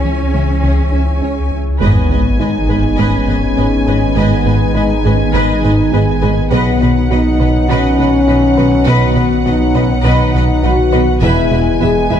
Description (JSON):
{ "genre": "cinematic, hybrid orchestral and electronic film score", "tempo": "102 BPM", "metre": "4/4", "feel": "straight", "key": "G# minor", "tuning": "A4 = 439 Hz", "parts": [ { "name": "rich symphonic violin section", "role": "second line", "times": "0.0-12.2 s", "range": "G#4 to G#5", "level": "-26 LUFS", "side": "left 2 dB", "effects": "none" }, { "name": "rich studio viola section", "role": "accompaniment", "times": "0.0-12.2 s", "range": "C#4 to B4", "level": "-23 LUFS", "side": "right 1 dB", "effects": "none" }, { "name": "glassy FM pad", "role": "sustained chords", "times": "0.0-12.2 s", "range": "D#3 to C#5", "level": "-22 LUFS", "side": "left 1 dB", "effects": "ensemble chorus, built-in reverb" }, { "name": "soft round pluck", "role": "arpeggios", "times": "0.0-12.2 s", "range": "C#3 to B4", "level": "-24 LUFS", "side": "right 2 dB", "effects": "none" }, { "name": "rich studio cello section", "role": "bass", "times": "0.0-12.2 s", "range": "E2 to C#4", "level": "-22 LUFS", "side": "right 3 dB", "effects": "none" }, { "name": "soft dub sub bass", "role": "bass", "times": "0.0-12.2 s", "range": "E1 to C#2", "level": "-18 LUFS", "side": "equal", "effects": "none" }, { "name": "round analog bass", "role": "riff", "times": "0.1-12.2 s", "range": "C#2 to B3", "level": "-20 LUFS", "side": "left 2 dB", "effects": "none" }, { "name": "warm symphonic violin section", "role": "melody", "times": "1.8-12.2 s", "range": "F#5 to G#5", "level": "-24 LUFS", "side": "left 1 dB", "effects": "none" }, { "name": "bright trombone section", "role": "sustained chords", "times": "1.8-12.2 s", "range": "D#3 to G#3", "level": "-23 LUFS", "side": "right 4 dB", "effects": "none" }, { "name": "mellow French horn section", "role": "sustained chords", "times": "1.8-12.2 s", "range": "B3 to G#4", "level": "-16 LUFS", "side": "left 3 dB", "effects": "none" }, { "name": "warm symphonic double bass section", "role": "bass", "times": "1.8-12.2 s", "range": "E1 to B1", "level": "-20 LUFS", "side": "right 3 dB", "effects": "none" }, { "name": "sub drop", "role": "sound effects", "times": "1.8-4.2 s", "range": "none", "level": "-20 LUFS", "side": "equal", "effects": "none" } ], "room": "wet scoring stage reverb, RT60 1.7 s", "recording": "dark, warm production", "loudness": "-10 LUFS", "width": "side -9 dB against mid", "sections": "0.0-1.8 A section; 1.8-12.2 B section", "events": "impact 1.8-4.2", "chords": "0.0 C#m; 1.8 G#m; 6.5 B; 11.2 E", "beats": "0.05 0.64 1.23 | 1.81 2.40 2.99 3.58 | 4.17 4.75 5.34 5.93 | 6.52 7.11 7.70 8.29 | 8.87 9.46 10.05 10.64 | 11.23 11.81" }